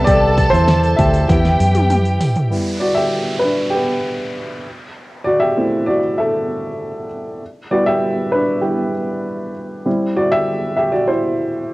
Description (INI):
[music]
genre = piano-driven pop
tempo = 98 BPM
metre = 4/4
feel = straight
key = E minor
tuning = A4 = 442 Hz
[part]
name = warm studio violin section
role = second line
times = 0.0-2.5 s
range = G4 to A5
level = -20 LUFS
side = equal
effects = cassette tape, analog delay, plate reverb
[part]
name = warm upright piano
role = accompaniment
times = 0.0-11.7 s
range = C3 to E5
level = -17 LUFS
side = equal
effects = cassette tape, plate reverb
[part]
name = vintage muted fingered electric bass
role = bass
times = 0.0-2.2 s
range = C2 to F#2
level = -16 LUFS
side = equal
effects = none
[part]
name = pop drum kit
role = drums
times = 0.1-2.5 s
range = hi-hat, kick drum, snare drum, toms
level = -19 LUFS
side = equal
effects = cassette tape
[part]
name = downlifter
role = sound effects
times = 2.5-7.4 s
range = none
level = -32 LUFS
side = right 1 dB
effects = none
[sound]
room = light reverb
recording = home recording on cassette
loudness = -14 LUFS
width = side -20 dB against mid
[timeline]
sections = 0.0-2.5 A section; 2.5-11.7 B section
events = upright piano solo 0.0-2.5, 2.5-11.7; drum fill 1.3-2.5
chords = 0.0 Am7/C; 1.3 Emadd9; 2.5 Em; 4.7 Am; 7.4 Em; 9.9 C